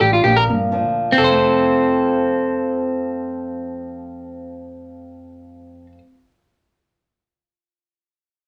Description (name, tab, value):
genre	highlife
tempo	127 BPM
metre	4/4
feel	straight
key	F major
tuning	A4 = 438 Hz
part	flamenco guitar	accompaniment	0.0-6.2 s	F2 to A4	-28 LUFS	equal	none
part	electric guitar at the edge of break-up	arpeggios	0.0-6.0 s	C4 to C5	-20 LUFS	equal	none
part	fingered electric bass	bass	0.0-5.9 s	F1 to G2	-27 LUFS	equal	none
room	wet studio ambience, RT60 0.5 s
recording	none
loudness	-18 LUFS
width	mono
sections	0.0-1.2 A section; 1.2-5.0 B section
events	clean electric guitar solo 0.0-1.2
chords	0.2 Bb6; 1.2 F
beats	0.23 0.70 | 1.18 1.65 2.12 2.60 | 3.07 3.54 4.02 4.49